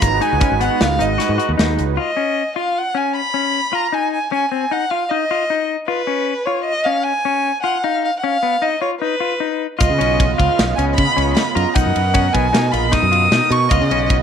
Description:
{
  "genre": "progressive instrumental, band music in an uneven meter",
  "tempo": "154 BPM",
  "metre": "5/4",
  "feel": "straight",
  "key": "unclear",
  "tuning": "A4 = 442 Hz",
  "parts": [
    { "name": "warm violin", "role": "melody", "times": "0.0-14.1 s", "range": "B4 to D#6", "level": "-19 LUFS", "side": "equal", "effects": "none" },
    { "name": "brassy analog pad", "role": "accompaniment", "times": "0.0-1.9, 9.8-14.2 s", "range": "B2 to D#5", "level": "-22 LUFS", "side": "right 13 dB", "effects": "chorus" },
    { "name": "semi-hollow electric guitar", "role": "arpeggios", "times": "0.0-14.2 s", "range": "B3 to F#4", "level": "-22 LUFS", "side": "left 9 dB", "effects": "none" },
    { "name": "modern bright fingered electric bass", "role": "bass", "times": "0.0-2.0, 9.8-14.2 s", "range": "G#1 to C#3", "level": "-20 LUFS", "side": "equal", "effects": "none" },
    { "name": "tight metal drum kit", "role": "drums", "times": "0.0-1.9, 9.8-14.2 s", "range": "hi-hat, kick drum, ride cymbal, snare drum", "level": "-20 LUFS", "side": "equal", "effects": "none" },
    { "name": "tube shaker", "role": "percussion", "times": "0.0-1.9, 9.8-13.9 s", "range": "none", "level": "-37 LUFS", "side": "right 19 dB", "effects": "none" }
  ],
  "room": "wet spring reverb, RT60 1.1 s, small room ambience",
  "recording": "1960s-style stereo with parts hard left and right",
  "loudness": "-15 LUFS",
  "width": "side -8 dB against mid",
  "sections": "0.0-2.0 A section; 2.0-14.2 B section",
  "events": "violin solo 0.0-2.0",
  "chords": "0.0 G#m7; 2.0 C#9; 3.9 Cmadd11 (rootless); 5.9 C#7; 7.8 C#9/B (rootless); 9.8 C#9; 11.8 Bmaj7; 13.7 C#9",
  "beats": "| 0.03 0.42 0.81 1.20 1.59 | 1.98 2.37 2.76 3.15 3.54 | 3.94 4.33 4.72 5.11 5.50 | 5.89 6.28 6.67 7.07 7.46 | 7.85 8.24 8.63 9.02 9.41 | 9.80 10.19 10.58 10.97 11.37 | 11.76 12.15 12.54 12.93 13.32 | 13.71 14.10"
}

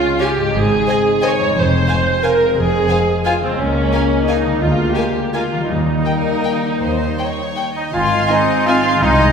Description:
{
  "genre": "classical, orchestral ballroom waltz",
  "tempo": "154-190 BPM",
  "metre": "3/4",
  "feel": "rubato",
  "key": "Ab major",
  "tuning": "A4 = 439 Hz",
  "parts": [
    { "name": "rich chamber viola section", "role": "accompaniment", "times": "0.0-8.7 s", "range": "C4 to Db5", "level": "-18 LUFS", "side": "right 2 dB", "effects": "none" },
    { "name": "mellow French horn section", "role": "sustained chords", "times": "0.0-8.8 s", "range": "G3 to Db4", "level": "-23 LUFS", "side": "left 2 dB", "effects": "none" },
    { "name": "concert harp", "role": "arpeggios", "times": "0.0-9.3 s", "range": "F2 to Ab5", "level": "-24 LUFS", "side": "left 4 dB", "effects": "none" },
    { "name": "warm chamber violin section", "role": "melody", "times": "0.2-8.8 s", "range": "G5 to Ab5", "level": "-28 LUFS", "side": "left 2 dB", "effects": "none" },
    { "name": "warm chamber violin section", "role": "second line", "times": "0.2-9.3 s", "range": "Bb4 to F5", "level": "-24 LUFS", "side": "left 1 dB", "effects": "none" },
    { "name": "dark chamber double bass section", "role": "bass", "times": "0.5-9.3 s", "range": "F1 to Eb2", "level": "-22 LUFS", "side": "right 1 dB", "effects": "none" },
    { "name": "rich studio cello section", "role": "bass", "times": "0.5-9.3 s", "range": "Db2 to C4", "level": "-24 LUFS", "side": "right 1 dB", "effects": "none" },
    { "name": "dark clarinet", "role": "second line", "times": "7.8-9.3 s", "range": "Eb4 to F4", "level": "-26 LUFS", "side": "right 1 dB", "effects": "none" },
    { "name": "clear trumpet section", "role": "stabs", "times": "7.8-9.3 s", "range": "Eb4 to F4", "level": "-17 LUFS", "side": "equal", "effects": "none" },
    { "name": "clear oboe", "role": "second line", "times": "7.9-9.3 s", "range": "Ab5", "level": "-24 LUFS", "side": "equal", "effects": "none" },
    { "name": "concert flute", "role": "second line", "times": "7.9-9.3 s", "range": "C6", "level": "-22 LUFS", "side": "left 1 dB", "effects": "none" }
  ],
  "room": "wet scoring stage reverb, RT60 1.9 s",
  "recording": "heard from further back in the room",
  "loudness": "-14 LUFS",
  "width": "side -6 dB against mid",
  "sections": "0.0-7.9 A section; 7.9-9.3 B section",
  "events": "none",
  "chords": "0.0 Db; 0.5 Ab; 1.6 Fm; 3.6 Bbm7/Db; 4.6 Bb7/D; 5.7 Eb; 7.9 Ab",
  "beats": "0.21 | 0.54 0.88 1.23 | 1.56 1.90 2.24 | 2.57 2.91 3.26 | 3.59 3.93 4.29 | 4.62 4.97 5.34 | 5.70 6.07 6.45 | 6.82 7.19 7.58 | 7.93 8.29 8.67 | 9.02"
}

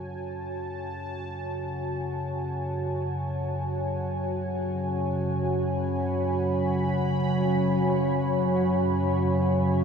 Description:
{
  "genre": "dark ambient drone",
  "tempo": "free time",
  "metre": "none",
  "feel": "none",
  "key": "F# minor",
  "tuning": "A4 = 438 Hz",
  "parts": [
    { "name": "sweeping resonant pad", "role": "sustained chords", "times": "0.0-9.8 s", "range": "F#4 to B5", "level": "-29 LUFS", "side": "right 1 dB", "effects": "chorus, shimmer reverb" },
    { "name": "analog drone", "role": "drone", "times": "0.0-9.8 s", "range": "F#2 to C#3", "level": "-27 LUFS", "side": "equal", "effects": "chorus" }
  ],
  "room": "wet huge ambient reverb, RT60 7.7 s",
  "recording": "dark, warm production",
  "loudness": "-25 LUFS",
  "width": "side -6 dB against mid",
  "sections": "0.0-9.8 A section",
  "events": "fade-in on synth drone 0.0-9.8; fade-in on analog synth pad 0.0-9.8",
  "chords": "0.0 F#madd9",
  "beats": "free time"
}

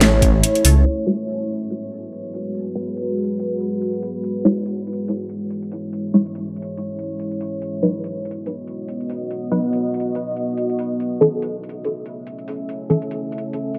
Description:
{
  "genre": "deep dubstep",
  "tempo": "142 BPM",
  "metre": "4/4",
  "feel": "swing 56% on 16ths, half-time",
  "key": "G# phrygian",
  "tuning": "A4 = 435 Hz",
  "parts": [
    { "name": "deep dark ambient pad", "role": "sustained chords", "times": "0.0-13.8 s", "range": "G#3 to E5", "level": "-26 LUFS", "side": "equal", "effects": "chorus, built-in reverb" },
    { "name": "dark detuned saw bass", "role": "bass", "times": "0.0-0.8 s", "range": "A1 to C#2", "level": "-17 LUFS", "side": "equal", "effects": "none" },
    { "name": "dubstep drum kit", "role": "drums", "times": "0.0-13.8 s", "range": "crash cymbal, hi-hat, snare drum", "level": "-20 LUFS", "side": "equal", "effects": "low-pass filter on hats, low-pass filter on perc, low-pass filter on snare, low-pass filter on cymbals" },
    { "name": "filtered dub chord stab", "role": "stabs", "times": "1.1-13.0 s", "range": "E3 to C#5", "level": "-23 LUFS", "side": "equal", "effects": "phaser, subtle chorus, dub echo" }
  ],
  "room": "moderate lush hall reverb, RT60 2.2 s",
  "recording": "low-pass filter",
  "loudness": "-22 LUFS",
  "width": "mono",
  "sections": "0.9-13.8 A section",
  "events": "filter sweep on drum 0.9-13.8; filter sweep on synth stab 0.9-13.8; filter sweep 0.9-13.8",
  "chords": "0.0 A; 0.9 G#m7; 4.2 E6; 7.6 B; 11.0 A",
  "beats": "0.01 0.43 | 0.86 1.28 1.70 2.12 | 2.55 2.97 3.39 3.81 | 4.24 4.66 5.08 5.50 | 5.93 6.35 6.77 7.20 | 7.62 8.04 8.46 8.89 | 9.31 9.73 10.15 10.58 | 11.00 11.42 11.84 12.27 | 12.69 13.11 13.53"
}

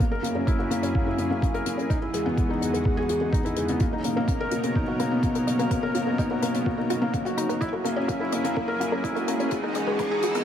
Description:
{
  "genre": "piano and strings electronica",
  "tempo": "126 BPM",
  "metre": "4/4",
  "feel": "straight",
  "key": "B major",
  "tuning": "A4 = 438 Hz",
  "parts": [
    { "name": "lush unison pad", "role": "sustained chords", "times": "0.0-10.4 s", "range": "E2 to A#4", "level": "-32 LUFS", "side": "right 2 dB", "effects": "chorus, sidechain pumping" },
    { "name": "wide unison pluck", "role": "arpeggios", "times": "0.0-10.4 s", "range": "B3 to B5", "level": "-34 LUFS", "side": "equal", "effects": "sidechain pumping, ping-pong delay" },
    { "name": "felt-muted upright piano", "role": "riff", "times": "0.0-10.4 s", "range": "G#3 to A#4", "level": "-25 LUFS", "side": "left 1 dB", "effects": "ping-pong delay" },
    { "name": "electronic kick drum", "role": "drums", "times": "0.0-10.1 s", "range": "none", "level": "-26 LUFS", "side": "right 1 dB", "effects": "none" },
    { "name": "hi-hat", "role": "drums", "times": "0.0-10.4 s", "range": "none", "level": "-38 LUFS", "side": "left 6 dB", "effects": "high-pass filter on hats, high-pass filter on room" },
    { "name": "riser", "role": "sound effects", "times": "8.6-10.4 s", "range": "none", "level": "-35 LUFS", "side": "right 1 dB", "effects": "none" }
  ],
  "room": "light reverb, studio reverb",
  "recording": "high-pass filter",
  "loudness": "-23 LUFS",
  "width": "side -9 dB against mid",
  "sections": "0.0-10.4 A section",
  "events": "build-up 0.0-10.4; filter sweep on analog synth pad 0.0-10.4; filter sweep on synth arpeggio sound 0.0-10.4; filter sweep 0.0-10.4; riser 8.6-10.4",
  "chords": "0.0 F#7; 1.9 Emaj7; 3.8 Bmaj7; 7.6 F#7; 9.5 Emaj7",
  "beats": "| 0.00 0.47 0.95 1.43 | 1.90 2.38 2.85 3.33 | 3.81 4.28 4.76 5.23 | 5.71 6.19 6.66 7.14 | 7.62 8.09 8.57 9.04 | 9.52 10.00"
}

